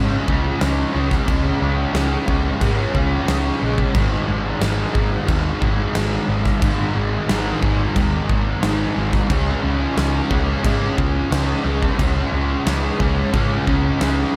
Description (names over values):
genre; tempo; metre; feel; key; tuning
rock, shoegaze and dream pop; 90 BPM; 4/4; straight; unclear; A4 = 440 Hz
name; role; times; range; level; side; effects
fuzz guitar; riff; 0.0-14.4 s; Ab2 to Db4; -23 LUFS; equal; distortion, analog chorus
hollow-body short-scale picked electric bass; bass; 0.0-14.2 s; Ab1 to Ab2; -25 LUFS; equal; none
huge arena drum kit; drums; 0.3-14.2 s; crash cymbal, kick drum, snare drum; -25 LUFS; equal; none
room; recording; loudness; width
moderate huge ambient reverb, RT60 6.7 s; dreamy mix soaked in reverb; -20 LUFS; mono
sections
0.0-14.4 A section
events
none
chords
0.0 Db5; 3.9 Ab5; 9.3 Db5